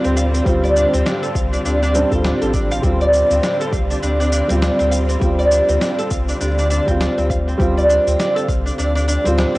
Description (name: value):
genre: organic downtempo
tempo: 101 BPM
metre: 4/4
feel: swing 59% on 16ths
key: D minor pentatonic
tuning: A4 = 438 Hz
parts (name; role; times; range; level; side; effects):
- felt-muted upright piano; accompaniment; 0.0-9.6 s; G3 to F4; -23 LUFS; right 1 dB; sidechain pumping, analog delay
- warm studio string section; sustained chords; 0.0-9.6 s; D3 to F4; -25 LUFS; equal; sidechain pumping
- oud; arpeggios; 0.0-9.6 s; C4 to F5; -19 LUFS; right 1 dB; analog delay
- electronic shaker and snare drum; drums; 0.0-9.6 s; none; -27 LUFS; equal; none
- warm sub bass; bass; 0.1-9.6 s; A1 to D2; -20 LUFS; equal; none
- electronic kick drum; drums; 0.5-8.6 s; none; -22 LUFS; equal; none
room: light reverb, small room ambience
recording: home recording on cassette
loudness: -14 LUFS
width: side -20 dB against mid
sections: 0.0-9.6 A section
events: none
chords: 0.0 Dm7